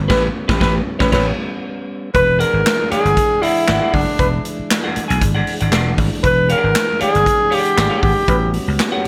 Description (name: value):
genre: funk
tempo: 117 BPM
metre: 4/4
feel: straight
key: E mixolydian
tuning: A4 = 445 Hz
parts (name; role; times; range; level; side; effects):
- mellow tonewheel organ; sustained chords; 0.0-9.1 s; E3 to F#4; -30 LUFS; equal; slow rotary speaker
- vintage slap bass; bass; 0.0-8.8 s; E1 to C#2; -21 LUFS; equal; none
- mellow trombone; second line; 0.1-8.4 s; B4; -24 LUFS; equal; none
- semi-hollow electric guitar; accompaniment; 0.1-9.1 s; C#4 to G#5; -25 LUFS; equal; phaser
- swinging big-band drum kit; drums; 0.1-9.1 s; crash cymbal, handclaps, hi-hat, kick drum, snare drum; -22 LUFS; equal; none
- breathy alto saxophone; melody; 2.1-8.5 s; D4 to B4; -19 LUFS; equal; tape echo
room: studio ambience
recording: none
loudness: -16 LUFS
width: mono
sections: 0.0-2.1 A section; 2.1-9.1 B section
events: band accent 0.1-2.1; alto saxophone solo 2.1-9.1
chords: 0.0 A9; 2.1 E9; 8.3 A13